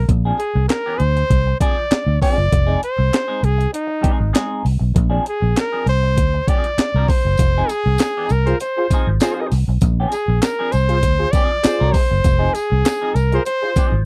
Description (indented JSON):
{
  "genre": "funk",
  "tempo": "99 BPM",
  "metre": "4/4",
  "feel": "straight",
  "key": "F dorian",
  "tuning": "A4 = 440 Hz",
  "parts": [
    { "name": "clear trumpet", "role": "melody", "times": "0.0-14.0 s", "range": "Eb4 to D5", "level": "-23 LUFS", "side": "equal", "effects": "none" },
    { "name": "vintage muted fingered electric bass", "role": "bass", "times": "0.0-14.0 s", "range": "F1 to D2", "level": "-19 LUFS", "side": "equal", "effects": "none" },
    { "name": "semi-hollow electric guitar", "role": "accompaniment", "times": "0.1-14.0 s", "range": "F3 to Bb4", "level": "-28 LUFS", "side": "equal", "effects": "wah" },
    { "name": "breakbeat sampler-style drum kit", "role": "drums", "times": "0.1-13.9 s", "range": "handclaps, hi-hat, kick drum, snare drum", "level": "-21 LUFS", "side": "equal", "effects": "none" },
    { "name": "tambourine", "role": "percussion", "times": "7.4-13.9 s", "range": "none", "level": "-39 LUFS", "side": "equal", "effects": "none" },
    { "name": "dark horn section", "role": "second line", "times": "8.5-13.7 s", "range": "F4 to C5", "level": "-24 LUFS", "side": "equal", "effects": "none" }
  ],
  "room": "little or no reverb",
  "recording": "dry, close 1970s-style studio recording",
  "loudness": "-18 LUFS",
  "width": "mono",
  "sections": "0.0-14.1 A section",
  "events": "trumpet solo 0.0-14.1",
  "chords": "0.1 Bb9 (rootless); 2.5 Fm7 (rootless); 5.0 Bb9; 7.4 Fm7; 9.8 Bb9; 12.2 Fm7",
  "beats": "| 0.09 0.70 1.31 1.92 | 2.52 3.13 3.74 4.35 | 4.96 5.57 6.17 6.78 | 7.39 8.00 8.61 9.21 | 9.82 10.43 11.04 11.64 | 12.25 12.86 13.46"
}